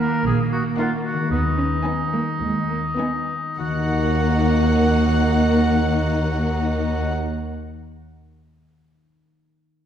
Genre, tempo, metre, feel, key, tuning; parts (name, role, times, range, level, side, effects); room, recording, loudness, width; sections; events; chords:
cinematic, playful, whimsical film cue; 98-118 BPM; 4/4; straight; Eb minor; A4 = 440 Hz
warm studio violin section; melody; 0.0-7.1 s; Gb5 to Ab5; -30 LUFS; equal
rich studio violin section; second line; 0.0-7.1 s; Eb4; -29 LUFS; left 2 dB
warm oboe; second line; 0.0-7.1 s; Eb4 to Bb4; -27 LUFS; equal
rich studio viola section; accompaniment; 0.0-7.1 s; Bb3 to Cb4; -23 LUFS; left 1 dB
concert harp; arpeggios; 0.0-7.5 s; Eb3 to Eb5; -28 LUFS; left 6 dB
rich symphonic cello section; bass; 0.0-7.1 s; Eb2 to Db4; -26 LUFS; right 2 dB
warm studio double bass section; bass; 0.3-7.1 s; Bb1 to Eb2; -24 LUFS; right 2 dB
wet scoring stage reverb, RT60 1.7 s; heard from further back in the room; -18 LUFS; side -9 dB against mid
0.0-3.6 A section; 3.6-8.3 B section
slowing down 0.0-3.6
0.0 Ebm; 1.3 Abm/Eb; 3.6 Ebm